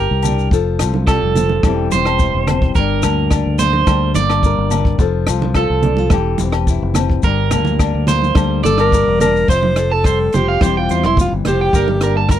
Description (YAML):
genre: highlife guitar band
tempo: 107 BPM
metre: 4/4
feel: straight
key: F major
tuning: A4 = 441 Hz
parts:
  - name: flamenco guitar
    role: accompaniment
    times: 0.0-12.4 s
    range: G2 to Bb4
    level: -21 LUFS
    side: left 10 dB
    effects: none
  - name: electric guitar at the edge of break-up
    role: arpeggios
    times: 0.0-12.4 s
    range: A4 to C6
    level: -19 LUFS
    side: right 8 dB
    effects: slapback echo
  - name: fingered electric bass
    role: bass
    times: 0.0-12.4 s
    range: E1 to E2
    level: -18 LUFS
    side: equal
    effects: none
  - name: compact cocktail drum kit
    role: drums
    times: 0.2-12.4 s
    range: crash cymbal, hi-hat, kick drum, rim click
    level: -16 LUFS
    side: equal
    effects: none
  - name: agogo bells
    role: percussion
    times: 0.2-9.4 s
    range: none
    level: -27 LUFS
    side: left 22 dB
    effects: none
  - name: congas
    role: percussion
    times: 0.2-12.0 s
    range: none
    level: -22 LUFS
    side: right 5 dB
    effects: none
  - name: maracas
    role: percussion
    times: 0.2-12.4 s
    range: none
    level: -31 LUFS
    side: left 14 dB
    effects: none
  - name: breathy alto saxophone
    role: melody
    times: 8.6-12.3 s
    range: E4 to C5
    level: -17 LUFS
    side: equal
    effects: none
room: little or no reverb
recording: dry, close 1970s-style studio recording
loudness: -13 LUFS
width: side -11 dB against mid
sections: 0.0-9.5 A section; 9.5-12.4 B section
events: clean electric guitar solo 0.0-9.5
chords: 0.0 Gm; 0.5 F; 1.6 C/E; 2.8 Gm; 5.0 F; 6.1 C/E; 7.2 Gm; 9.5 F; 10.6 C/E; 11.7 Gmadd9